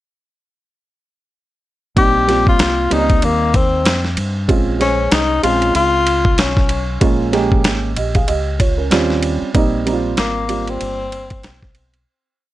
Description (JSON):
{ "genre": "hip hop, jazz-hop", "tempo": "95 BPM", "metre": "4/4", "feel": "swing 58% on 16ths", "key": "unclear", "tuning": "A4 = 440 Hz", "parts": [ { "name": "breathy tenor saxophone", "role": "melody", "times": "2.0-11.8 s", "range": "Bb3 to G4", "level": "-17 LUFS", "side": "left 3 dB", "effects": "plate reverb, tape echo" }, { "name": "dark upright piano", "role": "accompaniment", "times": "2.0-11.6 s", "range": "G3 to F5", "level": "-19 LUFS", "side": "right 4 dB", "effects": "plate reverb" }, { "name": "deep dub fingered electric bass", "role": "bass", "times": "2.0-12.0 s", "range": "G1 to G2", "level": "-22 LUFS", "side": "equal", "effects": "none" }, { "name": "dusty soul sampler-style drum kit", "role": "drums", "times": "2.0-12.1 s", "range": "hi-hat, kick drum, ride cymbal, snare drum", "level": "-18 LUFS", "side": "equal", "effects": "none" } ], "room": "light reverb", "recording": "none", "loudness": "-13 LUFS", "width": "side -15 dB against mid", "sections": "2.0-12.1 A section", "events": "fade-out 9.5-12.1", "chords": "2.0 F9sus4/Bb; 4.5 Bbm7; 7.0 Db69; 8.9 Eb13; 9.5 Abmaj7" }